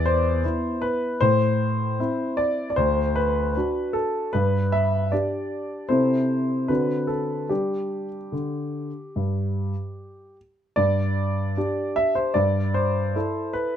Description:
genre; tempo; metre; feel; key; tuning
classical-period piano sonatina; 76 BPM; 4/4; straight; G major; A4 = 440 Hz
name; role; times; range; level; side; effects
warm grand piano; solo; 0.0-13.8 s; D2 to E5; -21 LUFS; equal; none
room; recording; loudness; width
light reverb; close, detailed microphones; -22 LUFS; side -9 dB against mid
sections
0.0-10.8 A section; 10.8-13.8 A section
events
none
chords
0.0 E5; 1.2 Am; 2.8 D; 4.3 G5; 5.9 Am/C; 6.7 D7; 7.5 G5; 12.4 Am7/G

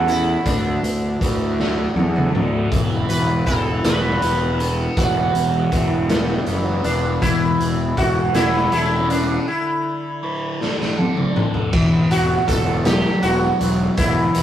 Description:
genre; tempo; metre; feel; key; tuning
psychedelic rock; 53 BPM (dotted quarters); 6/8; straight; unclear; A4 = 440 Hz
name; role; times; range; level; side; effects
sitar; melody; 0.0-14.4 s; D4 to B4; -22 LUFS; right 1 dB; none
thick fuzz guitar; riff; 0.0-14.4 s; D3 to B4; -23 LUFS; left 1 dB; distortion, phaser
fuzz picked electric bass; bass; 0.0-14.4 s; E1 to E2; -22 LUFS; equal; overdrive
raw garage drum kit; drums; 0.1-14.4 s; crash cymbal, hi-hat, kick drum, snare drum, toms; -22 LUFS; equal; none
room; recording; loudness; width
moderate small room reverb, RT60 0.5 s; rough rehearsal-room recording, tube saturation; -17 LUFS; side -11 dB against mid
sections
0.0-11.7 A section; 11.7-14.4 B section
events
drum fill 1.6-2.7, 10.6-11.7; break 9.5-11.7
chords
0.5 Dsus2; 2.7 Esus2; 7.2 A/E; 9.5 Dsus2; 11.7 Esus2

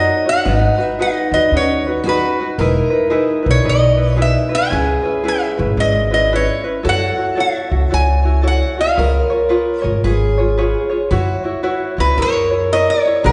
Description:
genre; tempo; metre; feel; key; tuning
Hawaiian; 113 BPM; 4/4; swing 62% on 8ths; unclear; A4 = 440 Hz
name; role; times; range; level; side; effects
lap resonator guitar; melody; 0.0-13.3 s; B4 to G#5; -20 LUFS; equal; none
picked steel-string acoustic guitar; second line; 0.0-13.3 s; D#4 to A#4; -24 LUFS; equal; none
tenor ukulele; accompaniment; 0.0-13.3 s; C#4 to C#5; -22 LUFS; equal; none
upright bass; bass; 0.0-13.3 s; E1 to F#2; -20 LUFS; equal; none
room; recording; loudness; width
wet recital hall reverb, RT60 1.5 s; heard from further back in the room, nothing above 10.3 kHz; -16 LUFS; mono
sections
0.0-13.3 A section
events
none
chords
0.5 G#m7; 2.6 Emaj7; 4.7 C#m7; 6.8 F#m7; 9.0 C#7; 11.1 F#7sus4; 12.2 F#9

